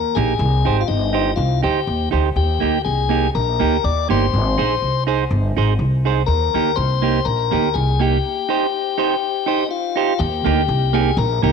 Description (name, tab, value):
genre	ska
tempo	122 BPM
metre	4/4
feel	swing 53% on 8ths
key	Eb major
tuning	A4 = 441 Hz
part	tonewheel organ	melody	0.0-11.5 s	Eb4 to D5	-21 LUFS	left 10 dB	none
part	upright bass	bass	0.0-11.5 s	G1 to Eb2	-19 LUFS	equal	none
part	clean electric guitar	accompaniment	0.2-11.5 s	Bb3 to C5	-21 LUFS	right 11 dB	none
room	moderate echo chamber reverb, RT60 2.0 s, small room ambience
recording	1960s-style stereo with parts hard left and right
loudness	-16 LUFS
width	side -6 dB against mid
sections	0.0-10.2 A section; 10.2-11.5 B section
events	break 8.2-10.2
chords	0.4 Cm; 2.4 Eb; 4.3 Ab; 6.3 Eb; 8.2 Cm; 10.2 Eb